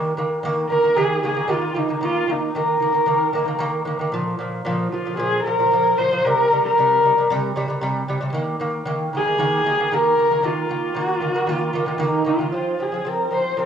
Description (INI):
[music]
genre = mongolian traditional, Mongolian folk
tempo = 114 BPM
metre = 4/4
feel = straight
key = unclear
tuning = A4 = 442 Hz
[part]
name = lute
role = arpeggios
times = 0.0-13.7 s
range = Bb2 to C4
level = -23 LUFS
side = right 1 dB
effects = cassette tape
[part]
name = warm horsehead fiddle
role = melody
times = 0.7-13.7 s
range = Eb4 to C5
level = -19 LUFS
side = equal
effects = cassette tape, analog delay
[sound]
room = moderate spring reverb, RT60 1.3 s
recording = home recording on cassette, studio ambience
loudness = -18 LUFS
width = side -8 dB against mid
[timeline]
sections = 0.0-12.5 A section; 12.5-13.7 B section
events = none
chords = 0.0 Eb5; 4.1 Bb5; 6.2 C5; 8.3 Eb5; 12.5 F5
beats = 0.44 0.96 1.49 | 2.02 2.55 3.07 3.60 | 4.13 4.65 5.18 5.71 | 6.23 6.76 7.29 7.81 | 8.34 8.86 9.39 9.91 | 10.44 10.96 11.49 12.02 | 12.54 13.07 13.60